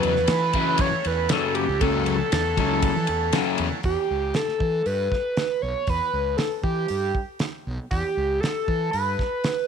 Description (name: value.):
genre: psychedelic rock.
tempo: 118 BPM.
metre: 4/4.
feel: straight.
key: E dorian.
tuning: A4 = 439 Hz.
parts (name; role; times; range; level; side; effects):
overdriven synth lead; melody; 0.0-9.7 s; G4 to C#5; -24 LUFS; right 1 dB; distortion, chorus, phaser, slapback echo.
combo organ; sustained chords; 0.0-3.8 s; A3 to F#5; -33 LUFS; right 18 dB; none.
fuzz guitar; riff; 0.0-3.7 s; F#2 to F#3; -25 LUFS; left 12 dB; distortion, phaser.
fuzz fingered electric bass; bass; 0.0-9.2 s; B1 to E3; -28 LUFS; right 1 dB; overdrive.
damped 70s drum kit; drums; 0.0-9.6 s; hi-hat, kick drum, ride cymbal, snare drum; -27 LUFS; right 1 dB; none.
room: little or no reverb.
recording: 1960s-style stereo with parts hard left and right.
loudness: -21 LUFS.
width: side -7 dB against mid.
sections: 0.0-3.8 A section; 3.8-9.7 B section.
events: none.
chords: 0.0 F#m7; 3.8 Em.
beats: 0.29 0.80 1.31 | 1.81 2.32 2.83 3.34 | 3.85 4.36 4.87 5.38 | 5.88 6.39 6.90 7.41 | 7.92 8.43 8.94 9.45.